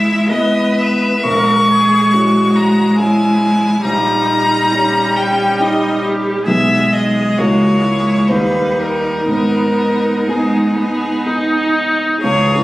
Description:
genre	classical, slow romantic movement for piano quartet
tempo	60-70 BPM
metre	3/4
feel	rubato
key	G# minor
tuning	A4 = 444 Hz
part	clear violin	melody	0.0-12.6 s	G#4 to C#6	-16 LUFS	left 1 dB	none
part	clear cello	second line	0.0-12.6 s	E3 to B4	-22 LUFS	right 2 dB	none
part	clear viola	accompaniment	0.0-12.6 s	G3 to G#4	-16 LUFS	equal	none
part	warm concert grand piano	accompaniment	0.0-12.6 s	A#1 to G#4	-19 LUFS	equal	none
room	wet recital hall reverb, RT60 1.6 s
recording	recorded on a phone in the room, club reverb, compression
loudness	-12 LUFS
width	side -17 dB against mid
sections	0.0-12.2 A section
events	none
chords	0.0 E/G#; 1.2 A#m7b5; 3.8 D#7/A#; 6.5 G#m/B; 7.4 A#m7b5/C#; 8.3 D#; 9.3 G#m

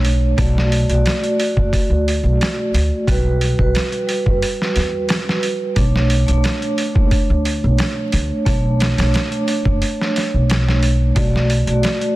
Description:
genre	trip hop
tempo	89 BPM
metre	4/4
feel	straight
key	B minor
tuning	A4 = 440 Hz
part	vibraphone with soft mallets	accompaniment	0.0-12.2 s	G3 to D5	-20 LUFS	right 1 dB	tremolo, tape echo
part	upright bass	bass	0.0-11.8 s	F#1 to E2	-17 LUFS	equal	none
part	boom bap sampler-style drum kit	drums	0.0-12.2 s	hi-hat, kick drum, snare drum	-20 LUFS	equal	overdrive
room	studio reverb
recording	dense, heavily limited modern master, vinyl crackle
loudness	-15 LUFS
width	side -17 dB against mid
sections	0.0-12.2 A section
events	none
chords	0.4 Bm7; 3.1 Gmaj7; 5.8 Bm9; 11.2 Bm7

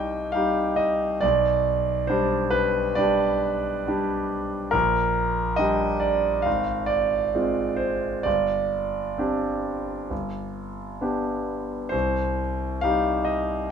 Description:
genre	classical, romantic character piece for solo piano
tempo	67 BPM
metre	4/4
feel	uneven beats, rubato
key	unclear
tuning	A4 = 441 Hz
part	clear concert grand piano	solo	0.0-13.7 s	G1 to G5	-22 LUFS	right 1 dB	none
room	moderate large studio reverb, RT60 1.1 s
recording	minimal, uncompressed stereo recording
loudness	-22 LUFS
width	side -7 dB against mid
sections	0.0-13.7 A section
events	none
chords	0.0 Cm; 1.2 G/B; 4.7 Gm/Bb; 6.5 Fm/Ab; 8.3 Gsus4; 10.1 G; 11.9 Cm

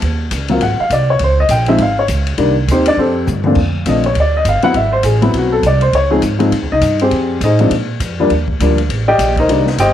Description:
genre	jazz piano trio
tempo	203 BPM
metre	4/4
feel	swing 60% on 8ths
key	Bb major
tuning	A4 = 441 Hz
part	upright bass	bass	0.0-9.9 s	G1 to Bb2	-16 LUFS	right 1 dB	none
part	open jazz drum kit	drums	0.0-9.9 s	crash cymbal, hi-hat, kick drum, ride cymbal, snare drum, toms	-23 LUFS	left 4 dB	none
part	dark upright piano	melody	0.5-9.9 s	Bb2 to G5	-13 LUFS	left 1 dB	none
room	light reverb, small room reverb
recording	1960s-style stereo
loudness	-11 LUFS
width	side -11 dB against mid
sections	0.0-3.6 A section; 3.6-9.9 B section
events	drum fill 3.3; upright piano solo 3.6-9.9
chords	0.0 Eb7(no3); 0.6 Ab; 1.2 Dbmaj7; 2.4 Cm7; 3.0 Fadd9; 3.6 Bb; 4.7 Ab7alt; 5.9 Dbmaj7(no3); 7.1 Fm9; 7.7 Bb5; 8.3 Ebmaj7

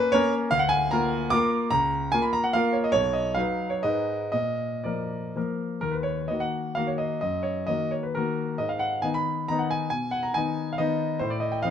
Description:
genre	classical, romantic triple-time dance for piano with dotted rhythms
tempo	112-165 BPM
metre	3/4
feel	rubato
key	Eb minor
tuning	A4 = 440 Hz
part	clear grand piano	solo	0.0-11.7 s	B1 to D6	-24 LUFS	equal	none
room	light reverb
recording	minimal, uncompressed stereo recording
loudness	-24 LUFS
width	side -8 dB against mid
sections	0.0-5.8 A section; 5.8-11.7 B section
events	none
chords	0.0 D#7(no3) (rootless); 0.5 Bb/D; 1.7 Bbm/Db; 2.9 B; 3.8 Abm; 4.3 Bb; 5.8 Ebm; 7.2 Ebm/Gb; 8.6 Abm; 9.9 B6; 11.2 F7/A

